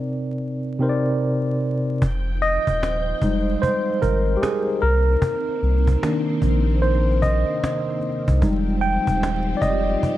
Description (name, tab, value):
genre	lo-fi hip hop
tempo	75 BPM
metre	4/4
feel	swing 65% on 16ths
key	F dorian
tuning	A4 = 438 Hz
part	tine electric piano	accompaniment	0.0-10.2 s	C3 to G5	-21 LUFS	equal	slow stereo tremolo, cassette tape, low-pass filter
part	ensemble organ-string	sustained chords	2.0-10.2 s	C3 to G5	-30 LUFS	equal	phaser, ensemble chorus, low-pass filter
part	sub bass with octave	bass	2.0-10.0 s	Eb1 to C2	-21 LUFS	equal	none
part	cajon	drums	2.0-10.2 s	none	-24 LUFS	equal	none
room	digital ambience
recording	vinyl crackle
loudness	-19 LUFS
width	side -14 dB against mid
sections	0.0-2.0 A section; 2.0-10.2 B section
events	filter sweep on tine electric piano 0.0-2.0; tine electric piano solo 2.0-10.2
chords	0.0 Cm9; 2.0 Fm9; 4.8 Cm9; 8.4 Fm9